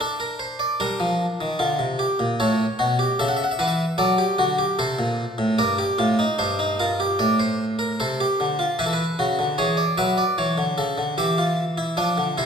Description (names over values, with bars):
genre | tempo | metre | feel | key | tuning
classical, baroque-style 3-part fugue for harpsichord | 75 BPM | 4/4 | straight | unclear | A4 = 441 Hz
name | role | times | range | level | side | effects
harpsichord | solo | 0.0-12.5 s | G2 to F#5 | -20 LUFS | equal | none
room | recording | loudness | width
wet recital hall reverb, RT60 1.6 s | minimal, uncompressed stereo recording | -20 LUFS | side -6 dB against mid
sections
0.0-12.5 A section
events
none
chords
0.0 D5; 0.8 Gm; 2.4 A; 4.0 D; 5.6 Gm; 7.2 D5/A; 8.8 E7; 10.4 A